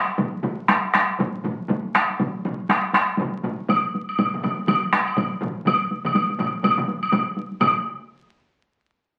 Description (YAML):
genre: japanese traditional, taiko drum ensemble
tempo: 122 BPM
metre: 4/4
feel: swing 60% on 16ths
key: none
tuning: none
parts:
  - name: solo taiko drums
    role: percussion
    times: 0.1-7.8 s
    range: none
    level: -28 LUFS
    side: equal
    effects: none
  - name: taiko ensemble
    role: percussion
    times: 0.2-8.1 s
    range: none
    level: -30 LUFS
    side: equal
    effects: none
  - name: taiko ensemble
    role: percussion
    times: 0.2-8.1 s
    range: none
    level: -27 LUFS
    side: equal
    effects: none
  - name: solo taiko drums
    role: percussion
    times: 1.2-7.8 s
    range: none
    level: -39 LUFS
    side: equal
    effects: none
  - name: woodblock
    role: percussion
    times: 3.7-7.8 s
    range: none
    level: -25 LUFS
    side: equal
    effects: none
room: wet studio reverb, RT60 0.6 s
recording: very old 78 rpm record, vinyl crackle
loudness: -23 LUFS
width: mono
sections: 0.0-7.6 A section; 7.6-9.2 B section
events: speeding up 0.0-9.2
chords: none